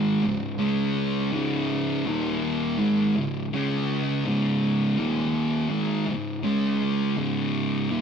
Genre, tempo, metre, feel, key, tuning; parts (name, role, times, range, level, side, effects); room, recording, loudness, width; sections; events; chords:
metal; 82 BPM; 4/4; straight; A4 = 440 Hz
thick fuzz guitar; solo; 0.0-8.0 s; C#2 to C#4; -23 LUFS; equal; distortion, digital delay
light reverb; rough rehearsal-room recording; -23 LUFS; side -7 dB against mid
0.0-8.0 A section
0.0 C#5; 2.1 D#5; 2.8 C#5; 5.0 D#5; 5.7 C#5